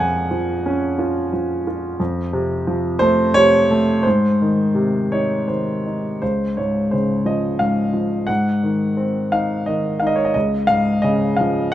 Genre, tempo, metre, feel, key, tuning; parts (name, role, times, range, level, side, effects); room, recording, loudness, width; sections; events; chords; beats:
classical, lyrical solo piano; 58 BPM (dotted quarters); 6/8; rubato; Db major from 6.2 s; A4 = 440 Hz
warm grand piano; solo; 0.0-11.7 s; Db2 to Ab5; -16 LUFS; equal
moderate spring reverb, RT60 2.2 s; minimal, uncompressed stereo recording; -16 LUFS; side -12 dB against mid
0.0-6.2 A section; 6.2-11.7 B section
0.0 Bbm7; 2.0 F; 4.1 Ab; 6.2 Db; 8.3 Ab7; 10.4 Db
0.99 | 2.00 3.01 | 4.05 5.13 | 6.21 7.26 | 8.29 9.33 | 10.35 11.39